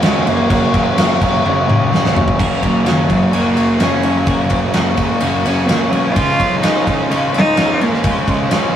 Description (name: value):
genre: quiet-loud alternative rock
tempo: 127 BPM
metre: 4/4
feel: straight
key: F# major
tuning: A4 = 438 Hz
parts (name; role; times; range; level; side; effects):
- rich cello; melody; 0.0-8.8 s; D#3 to E#4; -18 LUFS; equal; none
- fuzz guitar; riff; 0.0-8.8 s; F#2 to F#4; -19 LUFS; left 4 dB; distortion
- fuzz guitar; riff; 0.0-8.8 s; F#2 to C#4; -21 LUFS; right 4 dB; distortion
- fuzz picked electric bass; bass; 0.0-8.7 s; F#1 to D#2; -23 LUFS; equal; overdrive
- big rock drum kit; drums; 0.0-8.6 s; crash cymbal, kick drum, ride cymbal, snare drum, toms; -17 LUFS; equal; none
- twelve-string electric guitar; arpeggios; 2.4-8.8 s; F#2 to F#4; -24 LUFS; equal; none
room: moderate booth ambience, RT60 0.2 s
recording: rough rehearsal-room recording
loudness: -12 LUFS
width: side -10 dB against mid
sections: 0.0-2.4 A section; 2.4-8.8 B section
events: drum fill 1.4-2.4; cello solo 2.4-8.8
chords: 0.0 F#; 6.2 C#add9